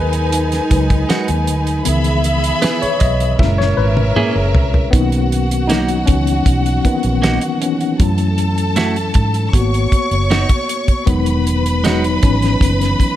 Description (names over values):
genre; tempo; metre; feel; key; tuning
lush 1970s-style soul; 78 BPM; 4/4; straight; B major; A4 = 444 Hz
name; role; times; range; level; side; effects
warm studio string section; second line; 0.0-13.2 s; C#4 to C#6; -21 LUFS; equal; none
tine electric piano; accompaniment; 0.0-13.2 s; A#2 to E5; -19 LUFS; left 3 dB; overdrive, fast stereo tremolo
vintage muted fingered electric bass; bass; 0.0-12.9 s; E1 to G#2; -17 LUFS; equal; none
damped 70s drum kit; drums; 0.1-13.2 s; hi-hat, kick drum, snare drum, toms; -17 LUFS; equal; none
clean electric guitar; riff; 1.1-12.0 s; G#3 to G#4; -21 LUFS; right 4 dB; none
room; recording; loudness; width
small room ambience; none; -13 LUFS; side -12 dB against mid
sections
0.0-4.9 A section; 4.9-13.2 B section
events
tine electric piano solo 0.0-4.9, 4.9-13.2; drum fill 3.4-4.9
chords
0.0 Emaj9 (rootless); 1.9 C#m7; 3.4 F#9; 4.9 Bmaj7; 8.0 F#m7; 9.5 G#m7; 11.1 Emaj9